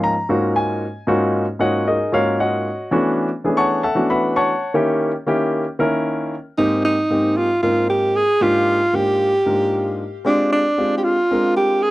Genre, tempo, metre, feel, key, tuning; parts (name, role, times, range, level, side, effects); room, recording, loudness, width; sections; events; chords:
jazz; 229 BPM (eighths); 7/8; straight; Ab lydian from 6.6 s; A4 = 440 Hz
warm grand piano; accompaniment; 0.0-11.9 s; Ab2 to C#6; -18 LUFS; left 1 dB
warm alto saxophone; melody; 6.6-11.9 s; D4 to Ab4; -16 LUFS; right 1 dB
light reverb; dry, close 1970s-style studio recording; -16 LUFS; side -18 dB against mid
0.0-6.6 A section; 6.6-11.9 B section
0.0 Ab13sus4; 2.9 E13sus4; 4.7 Eb7b9; 6.6 Abmaj9; 8.4 Gm7/Ab; 10.3 Bb13/Ab